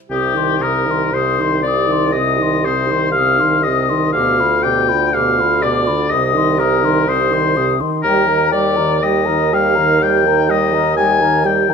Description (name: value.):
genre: classical, slow romantic movement for wind quintet.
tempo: 61 BPM.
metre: 4/4.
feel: rubato.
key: C minor.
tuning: A4 = 440 Hz.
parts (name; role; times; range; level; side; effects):
mellow hollow concert flute; melody; 0.1-11.7 s; G5 to Eb6; -21 LUFS; left 11 dB; none.
warm oboe; second line; 0.1-11.7 s; G4 to Ab5; -16 LUFS; left 4 dB; none.
mellow clarinet; accompaniment; 0.1-11.7 s; Eb4 to Bb4; -23 LUFS; right 12 dB; none.
warm French horn; accompaniment; 0.1-11.7 s; B2 to G3; -23 LUFS; equal; none.
warm bassoon; bass; 0.1-11.7 s; C2 to Eb2; -19 LUFS; right 4 dB; none.
room: moderate recital hall reverb, RT60 1.3 s.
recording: close, detailed microphones.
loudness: -13 LUFS.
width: side -6 dB against mid.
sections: 0.1-11.7 A section.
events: none.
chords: 0.1 Cm; 4.2 G7/D; 6.1 Cm; 8.1 Eb.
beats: | 0.10 1.13 2.14 3.15 | 4.15 5.15 6.11 7.08 | 8.05 9.04 10.03 10.98.